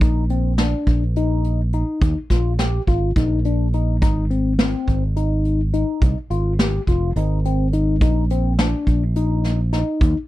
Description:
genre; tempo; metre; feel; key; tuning
progressive instrumental, band music in an uneven meter; 210 BPM (eighths); 7/8; straight; unclear; A4 = 439 Hz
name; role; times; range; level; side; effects
tine electric piano; arpeggios; 0.0-10.2 s; C4 to G4; -24 LUFS; left 3 dB; phaser
fingered electric bass; bass; 0.0-10.1 s; F1 to Eb2; -20 LUFS; equal; none
soft brush drum kit; drums; 0.0-10.1 s; hi-hat, kick drum, snare drum; -19 LUFS; equal; none
room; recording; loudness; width
little or no reverb; none; -17 LUFS; side -16 dB against mid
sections
0.0-10.3 A section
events
none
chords
0.0 Bbsus4; 4.0 Ab6; 8.0 Bbsus4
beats
| 0.02 0.31 0.59 0.88 1.17 1.45 1.74 | 2.02 2.31 2.59 2.88 3.17 3.45 3.74 | 4.02 4.31 4.59 4.88 5.16 5.45 5.74 | 6.02 6.31 6.59 6.88 7.16 7.45 7.73 | 8.02 8.30 8.59 8.87 9.16 9.44 9.73 | 10.02

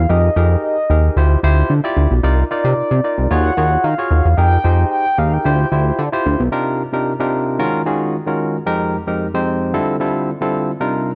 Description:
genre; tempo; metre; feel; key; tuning
early-eighties boogie funk; 112 BPM; 4/4; straight; unclear; A4 = 438 Hz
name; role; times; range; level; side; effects
mellow horn-like synth lead; melody; 0.0-6.0 s; D5 to G5; -22 LUFS; equal; chorus
chorused synth bass; bass; 0.0-6.5 s; B1 to Eb3; -16 LUFS; equal; none
barky tine electric piano; accompaniment; 0.1-11.1 s; F2 to D5; -21 LUFS; equal; overdrive
room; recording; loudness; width
light reverb; dark, warm production, nothing above 10.5 kHz; -17 LUFS; mono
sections
0.0-6.5 A section; 6.5-11.2 B section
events
none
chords
0.1 Fm11; 1.2 Dm11; 2.2 Cm11; 3.3 Ebm11; 4.4 Fm11; 5.4 Dm11; 6.5 Cm11; 7.6 Ebm11; 8.7 Fm11; 9.7 Dm11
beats
| 0.09 0.63 1.16 1.70 | 2.23 2.77 3.31 3.84 | 4.38 4.91 5.45 5.99 | 6.52 7.06 7.59 8.13 | 8.66 9.20 9.73 10.27 | 10.81

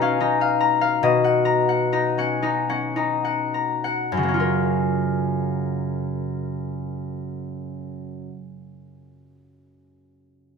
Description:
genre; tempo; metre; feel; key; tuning
classical, solo harp piece; 33-52 BPM (dotted quarters); 6/8; rubato; F# major; A4 = 440 Hz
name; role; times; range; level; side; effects
concert harp; solo; 0.0-8.5 s; F#2 to A#5; -21 LUFS; left 2 dB; none
room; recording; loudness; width
moderate stone room reverb, RT60 1.0 s; none; -20 LUFS; side -5 dB against mid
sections
0.0-4.1 A section; 4.1-10.6 B section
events
slowing down 0.0-4.1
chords
0.0 Bmaj7#11; 1.0 Bmaj7; 4.1 F#maj7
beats
| 1.02 2.42 | 4.12 5.75 | 7.41

